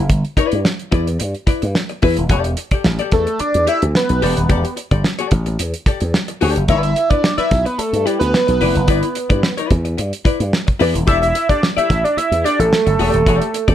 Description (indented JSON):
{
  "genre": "funk",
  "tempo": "109 BPM",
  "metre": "4/4",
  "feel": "straight",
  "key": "E minor",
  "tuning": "A4 = 442 Hz",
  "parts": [
    { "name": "slap bass with an envelope filter", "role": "bass", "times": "0.0-13.7 s", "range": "D#1 to G2", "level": "-18 LUFS", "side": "equal", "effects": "none" },
    { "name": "damped 70s drum kit", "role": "drums", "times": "0.1-13.7 s", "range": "hi-hat, kick drum, snare drum", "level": "-18 LUFS", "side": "right 1 dB", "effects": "none" },
    { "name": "archtop guitar, miked and amplified", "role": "accompaniment", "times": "0.4-13.7 s", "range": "E4 to E5", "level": "-21 LUFS", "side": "left 7 dB", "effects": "none" },
    { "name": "fat analog lead", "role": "melody", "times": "3.1-13.7 s", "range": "G4 to E5", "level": "-17 LUFS", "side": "right 1 dB", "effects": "chorus" }
  ],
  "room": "light reverb",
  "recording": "dark, warm production",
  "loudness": "-14 LUFS",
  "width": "side -11 dB against mid",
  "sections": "0.0-2.3 A section; 2.3-13.7 B section",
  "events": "analog synth lead solo 2.3-13.7",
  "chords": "0.0 G6; 2.3 Em11; 6.7 G6; 11.1 Em11",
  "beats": "| 0.10 0.65 1.20 1.75 | 2.30 2.85 3.40 3.95 | 4.50 5.05 5.60 6.14 | 6.69 7.24 7.79 8.34 | 8.89 9.44 9.98 10.53 | 11.08 11.62 12.17 12.72 | 13.27"
}